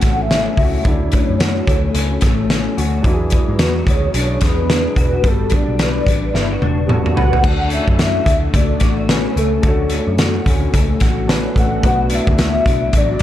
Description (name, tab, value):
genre	indie pop, bedroom pop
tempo	109 BPM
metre	4/4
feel	swing 60% on 16ths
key	D major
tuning	A4 = 440 Hz
part	soft octave-layered synth lead	melody	0.0-13.2 s	A4 to F#5	-22 LUFS	left 1 dB	phaser, ensemble chorus, analog delay
part	electric guitar through a small old amp	accompaniment	0.0-13.2 s	B2 to B4	-22 LUFS	left 4 dB	ensemble chorus, warbly pitch drift
part	warm upright piano	accompaniment	0.0-13.2 s	F#3 to C#5	-27 LUFS	right 2 dB	cassette tape
part	vintage muted picked electric bass	bass	0.0-13.2 s	E1 to G#2	-20 LUFS	equal	none
part	loose indie drum kit	drums	0.0-13.2 s	crash cymbal, hi-hat, kick drum, snare drum, toms	-16 LUFS	equal	none
room	moderate small room reverb, RT60 0.5 s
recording	dark, warm production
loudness	-13 LUFS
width	side -12 dB against mid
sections	0.0-7.4 A section; 7.4-13.2 B section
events	drum fill 6.3-7.4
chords	0.0 Dmaj7; 3.0 E9; 5.2 Gmaj9; 7.4 Dmaj7; 11.8 Bm7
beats	0.29 | 0.84 1.39 1.94 2.49 | 3.04 3.59 4.14 4.69 | 5.24 5.79 6.34 6.89 | 7.44 7.99 8.54 9.09 | 9.64 10.19 10.73 11.28 | 11.83 12.38 12.93